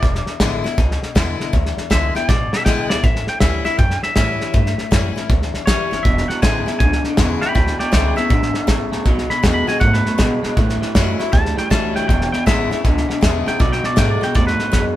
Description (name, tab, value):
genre	rockabilly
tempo	159 BPM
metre	4/4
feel	swing 64% on 8ths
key	E mixolydian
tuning	A4 = 440 Hz
part	twangy electric guitar	melody	0.0-14.8 s	B4 to B5	-22 LUFS	right 1 dB	none
part	picked steel-string acoustic guitar	accompaniment	0.0-15.0 s	E2 to F#4	-24 LUFS	left 6 dB	none
part	upright bass	bass	0.0-15.0 s	E1 to B2	-23 LUFS	equal	none
part	cloth-damped thuddy drum kit	drums	0.0-14.8 s	hi-hat, kick drum, snare drum	-18 LUFS	equal	none
part	electric guitar through a small old amp	riff	6.0-15.0 s	E2 to A3	-22 LUFS	right 1 dB	none
room	moderate studio reverb, RT60 0.8 s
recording	band playing live in one room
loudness	-15 LUFS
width	side -14 dB against mid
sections	0.0-15.0 A section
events	clean electric guitar solo 0.0-15.0; drum fill 2.3-3.0, 14.7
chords	0.0 E7; 3.0 A7; 6.0 E7; 9.1 B7; 10.6 A7; 12.1 E7; 13.6 B7